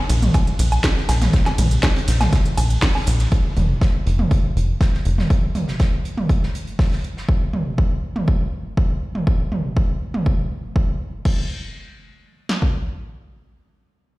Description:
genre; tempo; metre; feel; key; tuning
melodic techno; 121 BPM; 4/4; straight; unclear; A4 = 440 Hz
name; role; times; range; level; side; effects
tight sequencer bass; bass; 0.1-5.3 s; F1 to Bb1; -17 LUFS; equal; sidechain pumping
loose indie drum kit; drums; 0.1-7.3 s; hi-hat, snare drum; -35 LUFS; right 1 dB; sidechain pumping on hats, high-pass filter on hats, high-pass filter on snare, high-pass filter on room
techno drum kit; drums; 0.1-11.4 s; crash cymbal, hi-hat, ride cymbal, snare drum, toms, woodblock; -24 LUFS; right 1 dB; none
punchy analog drum machine; drums; 0.3-12.7 s; kick drum, snare drum; -18 LUFS; equal; none
room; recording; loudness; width
little or no reverb; played on a big sound system in a bare room, stone room reverb; -17 LUFS; side -20 dB against mid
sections
0.0-3.3 A section; 3.3-11.3 B section; 11.3-14.2 C section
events
drop 0.0-3.3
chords
none

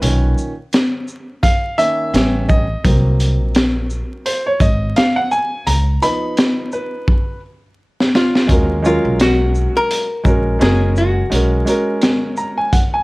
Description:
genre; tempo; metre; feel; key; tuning
hip hop, jazz-hop; 85 BPM; 4/4; swing 58% on 16ths; Eb minor; A4 = 440 Hz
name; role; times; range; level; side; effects
warm upright piano; accompaniment; 0.0-13.0 s; A#2 to Cb6; -19 LUFS; right 1 dB; none
upright bass; bass; 0.0-11.6 s; Gb1 to Eb2; -17 LUFS; equal; none
crunchy breakbeat drum kit; drums; 0.0-12.9 s; hi-hat, kick drum, shaker, snare drum; -16 LUFS; equal; none
archtop guitar, miked and amplified; melody; 8.2-12.0 s; F4 to Bb4; -19 LUFS; left 1 dB; analog delay
room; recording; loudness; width
light reverb; vinyl crackle; -14 LUFS; side -22 dB against mid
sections
0.0-8.5 A section; 8.5-13.0 B section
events
upright piano solo 0.0-8.5; drum fill 7.1-8.5; upright piano fill 12.0-13.0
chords
0.0 Bmaj9; 2.1 A9; 2.8 Ab9; 5.7 Db7 (rootless); 8.5 Ebm7; 10.6 Gb; 11.3 Bsus2

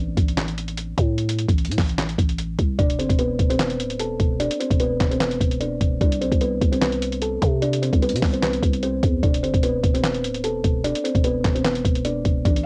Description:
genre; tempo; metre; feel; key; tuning
hip hop, trap; 149 BPM; 4/4; half-time; unclear; A4 = 440 Hz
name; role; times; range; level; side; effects
growling 808-style bass; bass; 0.0-12.7 s; D1 to C3; -28 LUFS; equal; none
dusty soul sampler-style drum kit; drums; 0.2-12.6 s; handclaps, hi-hat, kick drum, snare drum; -24 LUFS; equal; cassette tape
kalimba; melody; 2.8-12.6 s; B3 to A5; -26 LUFS; equal; low-pass filter, cassette tape, plate reverb, analog delay
room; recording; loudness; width
light reverb; home recording on cassette; -22 LUFS; mono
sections
0.0-12.7 A section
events
break 0.0-2.8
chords
0.0 N.C.; 2.8 E7(no3); 6.0 Csus2; 9.2 E7(no3)

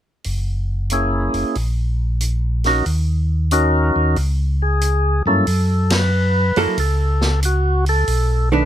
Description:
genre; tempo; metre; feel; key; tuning
soul jazz organ trio; 92 BPM; 4/4; swing 67% on 8ths; F# mixolydian; A4 = 439 Hz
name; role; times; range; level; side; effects
mellow tonewheel organ; bass; 0.2-8.7 s; F#1 to G2; -18 LUFS; equal; slow rotary speaker
vintage drum kit; drums; 0.2-8.3 s; hi-hat, ride cymbal, snare drum; -26 LUFS; right 1 dB; none
percussive tonewheel organ; melody; 0.9-8.7 s; F#2 to B4; -19 LUFS; equal; slow rotary speaker
archtop guitar, miked and amplified; accompaniment; 6.6-8.7 s; D#3 to A4; -17 LUFS; right 6 dB; none
room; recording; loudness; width
little or no reverb; close, detailed microphones; -16 LUFS; side -11 dB against mid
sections
0.2-5.5 A section; 5.5-8.7 B section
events
band accent 5.8-6.1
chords
0.2 F#7; 1.6 A#madd11; 2.9 D#m7; 4.2 C#5; 5.5 F#m; 8.1 B7#9

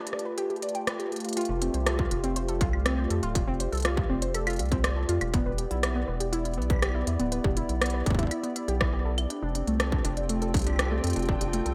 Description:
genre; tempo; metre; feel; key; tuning
IDM; 121 BPM; 4/4; straight; unclear; A4 = 440 Hz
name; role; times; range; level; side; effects
hollow soft pad; sustained chords; 0.0-11.7 s; A3 to D5; -36 LUFS; equal; chorus
warbly dusty pluck; arpeggios; 0.0-11.7 s; A3 to G5; -35 LUFS; equal; chorus, phaser, digital delay
flickering grainy texture; texture; 0.0-1.4, 9.8-11.7 s; G4 to A5; -44 LUFS; equal; built-in reverb, analog chorus
industrial drum kit; drums; 0.1-11.7 s; claves, hi-hat, rim click; -34 LUFS; equal; studio reverb, gated reverb
round analog bass; bass; 1.5-11.7 s; D1 to F2; -32 LUFS; equal; none
electronic kick drum; drums; 2.0-11.4 s; none; -31 LUFS; equal; distortion, studio reverb
room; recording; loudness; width
moderate lush hall reverb, RT60 1.7 s; bright 1980s-style digital production; -28 LUFS; mono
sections
0.0-1.4 A section; 1.4-11.7 B section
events
filter sweep on synth pluck 0.0-1.4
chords
0.0 G9; 1.4 F69; 5.3 Em7; 9.3 Dm7/F

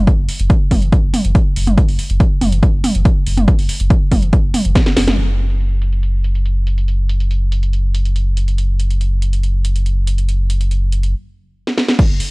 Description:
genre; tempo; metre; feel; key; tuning
driving peak-time techno; 141 BPM; 4/4; straight; unclear; A4 = 440 Hz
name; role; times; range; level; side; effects
saturated sub bass; bass; 0.0-12.2 s; F#1; -16 LUFS; equal; tube saturation, sidechain pumping, low-pass filter
electronic kick drum; drums; 0.1-4.8, 12.0-12.1 s; none; -13 LUFS; equal; none
techno drum kit; drums; 0.1-12.3 s; crash cymbal, hi-hat, ride cymbal, snare drum, toms; -19 LUFS; right 1 dB; low-pass filter on toms, low-pass filter on hats, low-pass filter on snare, low-pass filter on cymbals
room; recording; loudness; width
little or no reverb; dry, gritty hardware recording, cassette tape; -13 LUFS; side -27 dB against mid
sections
0.0-5.2 A section; 5.2-12.0 B section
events
drum fill 4.8-5.2, 11.7-12.0; band accent 5.1; stop 11.1-12.0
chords
none

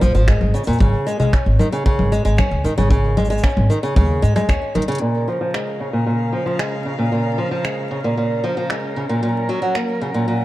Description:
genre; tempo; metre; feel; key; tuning
folktronica; 114 BPM; 4/4; straight; Db major; A4 = 440 Hz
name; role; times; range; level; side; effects
flamenco guitar; arpeggios; 0.0-10.4 s; Bb2 to Db4; -20 LUFS; equal; low-pass filter, digital delay
upright bass; bass; 0.0-4.9 s; Gb1 to Ab2; -17 LUFS; equal; none
organic electronic drum kit; drums; 0.0-9.9 s; congas, finger snaps, hi-hat, shaker; -24 LUFS; left 1 dB; none
kick drum; drums; 0.3-4.6 s; none; -18 LUFS; equal; none
dark string quartet; sustained chords; 5.0-10.4 s; Db3 to Gb5; -28 LUFS; left 1 dB; none
room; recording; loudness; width
light reverb, studio ambience; dark, warm production, vinyl crackle; -16 LUFS; side -16 dB against mid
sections
0.0-5.0 A section; 5.0-10.4 B section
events
drum fill 4.8; filter sweep on nylon-string guitar 5.0-10.4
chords
0.0 Db6 (rootless); 0.8 Absus4; 5.0 Db6; 9.2 Gb

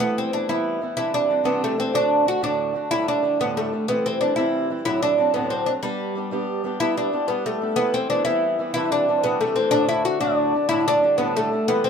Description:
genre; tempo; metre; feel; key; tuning
celtic folk; 123 BPM (dotted quarters); 6/8; straight; unclear; A4 = 440 Hz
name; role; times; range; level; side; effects
oud; melody; 0.0-11.9 s; G3 to F#4; -21 LUFS; equal; none
fingerpicked swing-style acoustic guitar; accompaniment; 0.0-11.9 s; D2 to G4; -26 LUFS; right 1 dB; none
mellow baroque flute; second line; 6.8-11.9 s; A4 to F#5; -27 LUFS; left 8 dB; none
room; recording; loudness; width
light reverb; minimal, uncompressed stereo recording; -19 LUFS; side -6 dB against mid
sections
0.0-6.8 A section; 6.8-11.9 A section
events
none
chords
0.0 Em; 1.0 Cadd9; 1.9 D; 2.9 Dsus4; 3.9 C; 4.9 D7; 5.8 G; 7.8 Em; 8.7 Cadd9; 9.7 D; 10.7 Dsus4

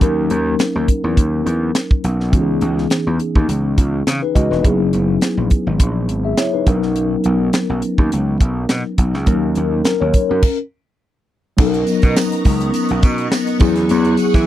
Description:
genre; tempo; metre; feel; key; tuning
polished 1980s jazz-funk pop; 104 BPM; 4/4; swing 54% on 16ths; unclear; A4 = 438 Hz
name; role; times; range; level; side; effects
mellow tine electric piano; accompaniment; 0.0-14.5 s; E3 to E5; -18 LUFS; left 2 dB; medium stereo tremolo, lush chorus
gritty slap bass; bass; 0.0-14.5 s; E1 to E3; -19 LUFS; right 1 dB; overdrive
tight funk drum kit; drums; 0.0-14.5 s; crash cymbal, hi-hat, kick drum, snare drum; -15 LUFS; equal; none
phased string machine; sustained chords; 11.6-14.5 s; B3 to C#6; -23 LUFS; right 1 dB; ensemble chorus, phaser
tambourine; percussion; 11.6-14.5 s; none; -35 LUFS; right 20 dB; none
room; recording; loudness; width
little or no reverb; dry, close 1970s-style studio recording; -14 LUFS; side -13 dB against mid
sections
0.0-11.6 A section; 11.6-14.5 B section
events
stop 10.4-11.6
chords
0.0 D#m7; 2.3 C#m9; 4.6 F#9sus4; 6.7 Bmaj9; 9.3 D#m7; 10.4 N.C.; 11.6 Bmaj9; 13.6 E69

